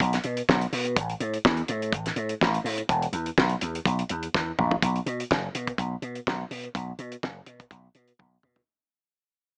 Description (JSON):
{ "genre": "disco", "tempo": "125 BPM", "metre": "4/4", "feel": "straight", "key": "unclear", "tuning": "A4 = 438 Hz", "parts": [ { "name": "slap bass with an envelope filter", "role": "bass", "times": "0.0-8.6 s", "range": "E1 to B2", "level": "-31 LUFS", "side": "equal", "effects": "none" }, { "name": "damped 70s drum kit", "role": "drums", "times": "0.0-8.7 s", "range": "hi-hat, kick drum, snare drum, toms", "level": "-29 LUFS", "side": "equal", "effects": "none" } ], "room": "light reverb", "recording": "small speaker sound", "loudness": "-27 LUFS", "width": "mono", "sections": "0.0-4.8 A section; 4.8-8.7 B section", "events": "drum fill 4.3-4.8, 8.2-8.7; fade-out 4.8-8.7", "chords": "none" }